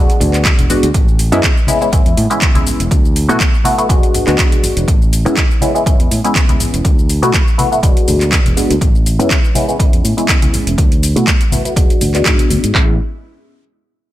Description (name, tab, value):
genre	filtered disco house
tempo	122 BPM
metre	4/4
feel	swing 54% on 16ths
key	A major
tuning	A4 = 440 Hz
part	funky polysynth comp	accompaniment	0.0-12.9 s	G#3 to F#4	-16 LUFS	left 1 dB	chorus, phaser, cassette tape, sidechain pumping, low-pass filter
part	modern bright fingered electric bass	bass	0.0-13.0 s	E1 to B2	-16 LUFS	equal	sidechain pumping, low-pass filter
part	house drum kit	drums	0.1-12.7 s	handclaps, hi-hat, shaker	-19 LUFS	equal	none
part	maracas and congas	percussion	0.1-12.7 s	none	-23 LUFS	left 1 dB	sidechain pumping on perc, low-pass filter on perc
part	punchy analog drum machine	drums	0.5-12.9 s	handclaps, kick drum	-13 LUFS	equal	none
room	digital ambience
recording	none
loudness	-10 LUFS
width	side -14 dB against mid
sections	0.0-12.7 A section; 12.7-14.1 B section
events	filter sweep on fingered electric bass 0.0-12.7; filter sweep 0.0-12.7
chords	0.0 E9 (rootless); 0.9 Amaj7; 2.9 D6; 3.9 E9 (rootless); 4.9 Amaj7; 6.8 D6; 7.8 E9; 8.8 Amaj7; 10.8 D6; 11.8 E9 (rootless); 12.7 Amaj7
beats	0.45 | 0.95 1.44 1.93 2.42 | 2.91 3.40 3.90 4.39 | 4.88 5.37 5.86 6.36 | 6.85 7.34 7.83 8.32 | 8.81 9.31 9.80 10.29 | 10.78 11.27 11.77 12.26 | 12.75